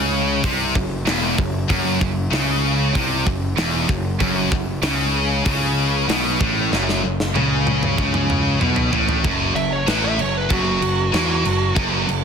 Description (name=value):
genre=heavy metal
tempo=95 BPM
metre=4/4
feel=straight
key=F# minor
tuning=A4 = 440 Hz
part: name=crunchy overdriven guitar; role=riff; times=0.0-9.2 s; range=E2 to C#3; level=-26 LUFS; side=left 1 dB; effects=none
part: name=scooped high-gain guitar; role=riff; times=0.0-12.2 s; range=E2 to E3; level=-24 LUFS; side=left 9 dB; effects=distortion
part: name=scooped high-gain guitar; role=riff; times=0.0-12.2 s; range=E2 to E3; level=-24 LUFS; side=right 12 dB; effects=distortion
part: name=fuzz picked electric bass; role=bass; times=0.0-12.2 s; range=E1 to E2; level=-24 LUFS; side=equal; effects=overdrive
part: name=tight metal drum kit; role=drums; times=0.4-12.2 s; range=crash cymbal, hi-hat, kick drum, snare drum, toms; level=-23 LUFS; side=equal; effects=soft clipping on kick
part: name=high-gain lead guitar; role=melody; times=9.6-11.7 s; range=F#4 to E5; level=-23 LUFS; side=right 2 dB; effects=distortion
room=little or no reverb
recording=dense, heavily limited modern master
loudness=-17 LUFS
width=side -6 dB against mid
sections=0.0-9.2 A section; 9.2-12.2 B section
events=drum fill 6.7-9.2; lead electric guitar solo 9.2-12.2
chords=0.0 F#m